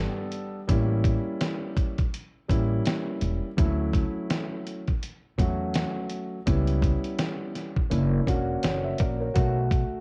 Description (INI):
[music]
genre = hip hop, jazz-hop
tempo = 83 BPM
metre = 4/4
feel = swing 59% on 16ths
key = unclear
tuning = A4 = 440 Hz
[part]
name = dark grand piano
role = accompaniment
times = 0.0-10.0 s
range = F#3 to E5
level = -32 LUFS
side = equal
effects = none
[part]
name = upright bass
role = bass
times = 0.0-9.8 s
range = E1 to E2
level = -29 LUFS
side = equal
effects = none
[part]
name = dusty soul sampler-style drum kit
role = drums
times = 0.3-9.9 s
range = hi-hat, kick drum, snare drum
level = -30 LUFS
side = equal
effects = cassette tape
[sound]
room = small room ambience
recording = home recording on cassette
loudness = -27 LUFS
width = mono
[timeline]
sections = 0.0-9.4 A section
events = none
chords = 0.0 Em7 (rootless); 0.7 A7b9; 3.6 Dmaj9; 6.5 C#m7b5; 7.9 F#7b13; 9.4 B7(no3)